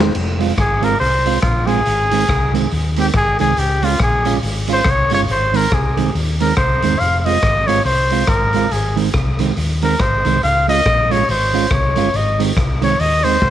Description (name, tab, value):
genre	ska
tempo	140 BPM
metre	4/4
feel	swing 59% on 8ths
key	unclear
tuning	A4 = 439 Hz
part	mellow electric guitar	accompaniment	0.0-13.5 s	Eb3 to F4	-21 LUFS	right 10 dB	warbly pitch drift
part	hollow-body short-scale fingered electric bass	bass	0.0-13.5 s	E1 to Eb2	-20 LUFS	left 1 dB	none
part	raw garage drum kit	drums	0.0-13.5 s	crash cymbal, hi-hat, kick drum, rim click, snare drum	-21 LUFS	left 1 dB	none
part	breathy trumpet	melody	0.6-13.5 s	F4 to F5	-17 LUFS	left 1 dB	none
room	light reverb, studio ambience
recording	1960s-style stereo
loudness	-14 LUFS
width	side -11 dB against mid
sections	0.2-13.5 A section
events	drum fill 0.0; trumpet solo 0.2-13.5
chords	0.2 Fm; 1.9 Ab; 3.6 Db; 5.3 Ab; 7.0 Fm; 8.7 Ab; 10.4 Db; 12.1 Ab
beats	| 0.15 0.58 1.01 1.44 | 1.87 2.29 2.72 3.15 | 3.58 4.01 4.43 4.86 | 5.29 5.72 6.15 6.58 | 7.00 7.43 7.86 8.29 | 8.72 9.15 9.57 10.00 | 10.43 10.86 11.29 11.71 | 12.14 12.57 13.00 13.42